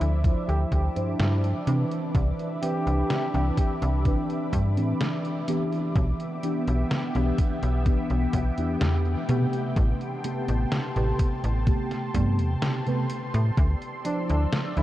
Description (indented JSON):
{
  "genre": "vaporwave",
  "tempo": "63 BPM",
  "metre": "4/4",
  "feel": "straight",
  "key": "A minor",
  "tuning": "A4 = 440 Hz",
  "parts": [
    { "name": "warm flugelhorn", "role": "melody", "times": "0.0-3.7, 14.1-14.8 s", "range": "D4 to G4", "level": "-35 LUFS", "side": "left 1 dB", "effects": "tape echo" },
    { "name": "mellow FM electric piano", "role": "accompaniment", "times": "0.0-14.8 s", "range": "C3 to C5", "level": "-29 LUFS", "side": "equal", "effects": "phaser, analog chorus, diffuse ambient delay" },
    { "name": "lush unison pad", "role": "sustained chords", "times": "0.0-14.8 s", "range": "B3 to E6", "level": "-34 LUFS", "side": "equal", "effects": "chorus, phaser" },
    { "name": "slap-like FM bass", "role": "bass", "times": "0.0-14.8 s", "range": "A1 to C3", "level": "-24 LUFS", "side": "equal", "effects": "none" },
    { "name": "detuned 8-bit digital drum machine", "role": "drums", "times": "0.0-14.8 s", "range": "hi-hat, snare drum", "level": "-34 LUFS", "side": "equal", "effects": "none" },
    { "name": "electronic kick drum", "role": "drums", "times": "0.2-13.8 s", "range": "none", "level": "-24 LUFS", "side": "equal", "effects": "none" }
  ],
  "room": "moderate huge ambient reverb, RT60 8.8 s",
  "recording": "dreamy mix soaked in reverb, cassette tape",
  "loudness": "-23 LUFS",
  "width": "side -14 dB against mid",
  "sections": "0.0-14.8 A section",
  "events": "none",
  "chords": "0.0 Dm9; 1.7 Cmaj9; 6.0 Em7/B; 9.8 Am9; 13.6 Dm9"
}